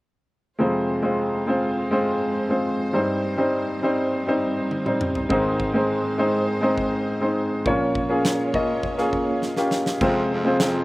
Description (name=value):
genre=piano-driven pop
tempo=102 BPM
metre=4/4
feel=straight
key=F minor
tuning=A4 = 444 Hz
part: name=clear upright piano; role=accompaniment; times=0.6-10.8 s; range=F2 to Eb5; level=-21 LUFS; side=equal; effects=slapback echo
part: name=warm studio string section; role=sustained chords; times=0.6-10.8 s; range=C3 to Db5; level=-32 LUFS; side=right 3 dB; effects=none
part: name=huge arena drum kit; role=drums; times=4.7-10.7 s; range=crash cymbal, kick drum, snare drum, toms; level=-28 LUFS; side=equal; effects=none
part: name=breathy baritone saxophone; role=bass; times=10.0-10.8 s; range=F2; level=-27 LUFS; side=equal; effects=none
room=little or no reverb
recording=recorded outdoors, with no room sound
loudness=-20 LUFS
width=side -19 dB against mid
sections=0.6-10.0 A section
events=drum fill 4.7-5.3, 9.4-10.0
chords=0.6 Fm; 2.9 Cm/G; 5.3 Ab; 7.7 Bbm; 10.0 Fm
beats=| 0.59 1.18 1.77 2.36 | 2.95 3.54 4.13 4.71 | 5.30 5.89 6.48 7.07 | 7.66 8.25 8.83 9.42 | 10.01 10.60